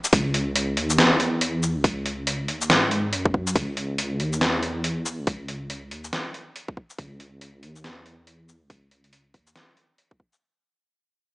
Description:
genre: deep dubstep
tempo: 140 BPM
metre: 4/4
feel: swing 60% on 16ths, half-time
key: C# minor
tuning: A4 = 440 Hz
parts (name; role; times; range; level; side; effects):
- trip hop sampler-style drum kit; drums; 0.0-10.4 s; hi-hat, shaker, snare drum; -23 LUFS; equal; none
- dark detuned saw bass; bass; 0.1-9.5 s; C#2 to G#2; -28 LUFS; equal; tube saturation
- electronic kick drum; drums; 0.1-10.3 s; none; -21 LUFS; equal; none
room: moderate echo chamber reverb, RT60 1.4 s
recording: small speaker sound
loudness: -21 LUFS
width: side -22 dB against mid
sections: 0.0-10.4 A section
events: fade-out 0.0-10.4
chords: none

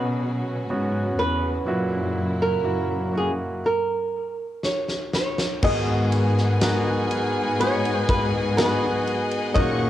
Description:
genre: pop ballad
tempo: 61 BPM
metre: 4/4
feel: straight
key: G# minor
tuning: A4 = 437 Hz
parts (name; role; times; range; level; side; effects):
- flamenco guitar; melody; 0.0-9.9 s; G#4 to D#5; -26 LUFS; right 1 dB; cassette tape
- clear concert grand piano; accompaniment; 0.0-9.9 s; G#2 to B4; -27 LUFS; right 1 dB; cassette tape
- warm studio string section; sustained chords; 0.0-9.9 s; A#2 to C#6; -31 LUFS; equal; cassette tape
- dark symphonic cello section; bass; 0.0-9.9 s; E2 to B2; -26 LUFS; left 1 dB; none
- huge arena drum kit; drums; 4.6-9.8 s; crash cymbal, kick drum, ride cymbal, snare drum; -27 LUFS; equal; cassette tape
- mellow French horn section; second line; 5.6-9.9 s; B3 to G#4; -30 LUFS; left 4 dB; cassette tape, tape echo
- fingerpicked steel-string acoustic guitar; arpeggios; 5.6-9.9 s; A#2 to F#4; -32 LUFS; left 5 dB; none
room: light reverb, small room reverb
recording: home recording on cassette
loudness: -21 LUFS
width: side -12 dB against mid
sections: 0.0-5.6 A section; 5.6-9.9 B section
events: drum fill 4.6-5.6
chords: 0.0 Bsus2; 1.7 F#7; 5.6 G#m7

